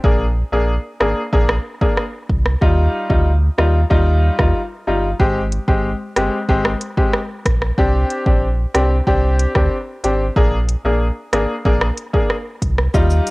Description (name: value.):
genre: dancehall.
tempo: 93 BPM.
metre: 4/4.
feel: straight.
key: unclear.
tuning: A4 = 440 Hz.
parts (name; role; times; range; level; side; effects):
clear grand piano; accompaniment; 0.0-13.3 s; G3 to Ab4; -19 LUFS; left 1 dB; cassette tape.
sub bass with octave; bass; 0.0-13.2 s; G1 to Eb2; -17 LUFS; equal; none.
afro-pop drum kit; drums; 0.0-13.3 s; hi-hat, kick drum, rim click, shaker; -18 LUFS; equal; cassette tape.
room: digital ambience.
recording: home recording on cassette.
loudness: -15 LUFS.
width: side -23 dB against mid.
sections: 0.0-13.3 A section.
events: none.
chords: 0.0 Bb7; 2.6 Ebadd9; 5.2 Abmaj7; 7.8 Csus2; 10.4 Bb7.